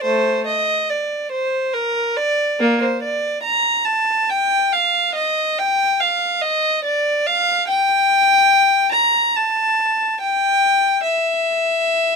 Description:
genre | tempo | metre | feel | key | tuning
classical, baroque-style suite movement for unaccompanied violin | 71 BPM | 3/4 | rubato | unclear | A4 = 441 Hz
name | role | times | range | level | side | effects
rich violin | solo | 0.0-12.2 s | A3 to Bb5 | -15 LUFS | equal | none
room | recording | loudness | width
light reverb | close, detailed microphones | -15 LUFS | side -4 dB against mid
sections
0.0-12.2 A section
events
none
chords
none

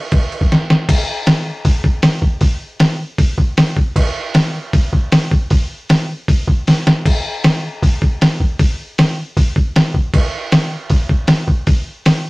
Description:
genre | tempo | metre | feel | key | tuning
punk | 156 BPM | 4/4 | straight | none | none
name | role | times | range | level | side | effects
trip hop sampler-style drum kit | drums | 0.1-12.2 s | crash cymbal, hi-hat, kick drum, snare drum | -13 LUFS | equal | none
room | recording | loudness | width
light reverb | rough rehearsal-room recording | -13 LUFS | side -23 dB against mid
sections
0.9-12.3 A section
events
drum fill 0.5-0.9, 6.7-7.1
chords
none

